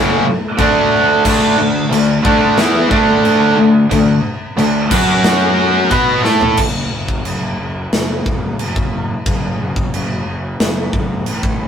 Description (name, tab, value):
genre	heavy metal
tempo	90 BPM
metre	4/4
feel	straight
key	unclear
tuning	A4 = 440 Hz
part	distorted electric guitar	riff	0.0-6.6 s	F#2 to B4	-21 LUFS	left 5 dB	overdrive
part	sludgy distorted guitar	riff	0.0-6.6 s	F#2 to B4	-19 LUFS	left 3 dB	overdrive
part	tight distorted guitar	riff	0.0-6.6 s	F#2 to B4	-14 LUFS	right 2 dB	distortion
part	fuzz picked electric bass	bass	0.0-11.7 s	F#1 to B2	-20 LUFS	left 1 dB	overdrive
part	big rock drum kit	drums	0.6-11.6 s	china cymbal, crash cymbal, kick drum, snare drum, toms	-18 LUFS	equal	none
room	light reverb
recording	rough rehearsal-room recording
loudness	-12 LUFS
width	side -8 dB against mid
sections	0.0-6.6 A section; 6.6-11.7 B section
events	drum fill 6.3-6.6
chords	0.0 F#5; 0.6 D5; 4.9 F#5; 5.9 B7sus4; 6.6 N.C.